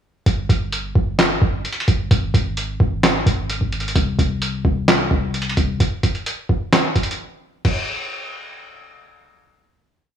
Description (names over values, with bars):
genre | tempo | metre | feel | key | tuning
hip hop, trap | 130 BPM | 4/4 | half-time | unclear | A4 = 440 Hz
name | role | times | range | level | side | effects
clean 808-style bass | bass | 0.3-5.8 s | G1 to C2 | -22 LUFS | equal | none
lo-fi sampler-style drum kit | drums | 0.3-7.8 s | crash cymbal, handclaps, hi-hat, kick drum, snare drum | -18 LUFS | equal | none
room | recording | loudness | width
light reverb | studio ambience | -17 LUFS | side -9 dB against mid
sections
0.3-7.6 hook; 7.6-10.2 final hit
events
break 7.2-7.6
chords
none